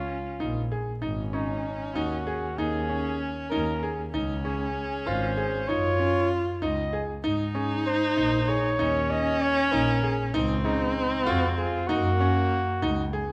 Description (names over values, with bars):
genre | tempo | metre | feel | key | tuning
contemporary instrumental, chamber music in an uneven meter | 193 BPM (eighths) | 5/8 | straight | Db major | A4 = 441 Hz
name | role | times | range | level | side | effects
warm flugelhorn | melody | 0.0-13.1 s | Eb4 to Eb5 | -32 LUFS | equal | none
warm viola | second line | 0.0-13.1 s | Bb3 to F4 | -32 LUFS | equal | none
bright baby grand piano | arpeggios | 0.0-13.3 s | Db3 to Ab4 | -33 LUFS | equal | none
clear double bass | bass | 0.0-13.3 s | Ab1 to Ab2 | -32 LUFS | equal | none
room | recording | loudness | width
light reverb | close, detailed microphones | -27 LUFS | mono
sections
0.0-1.0 A section; 1.0-13.3 B section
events
none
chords
0.0 Db69; 1.0 Ab7sus4; 2.6 Eb7sus4; 4.1 Db5; 5.7 Gb5; 7.2 Absus4; 10.3 Db; 11.9 Gb5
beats
0.09 0.40 0.71 | 1.03 1.34 1.65 1.96 2.27 | 2.58 2.89 3.20 3.51 3.82 | 4.13 4.44 4.75 5.07 5.38 | 5.69 6.00 6.31 6.62 6.93 | 7.24 7.55 7.86 8.17 8.48 | 8.79 9.10 9.41 9.72 10.03 | 10.34 10.65 10.96 11.27 11.58 | 11.89 12.20 12.51 12.82 13.13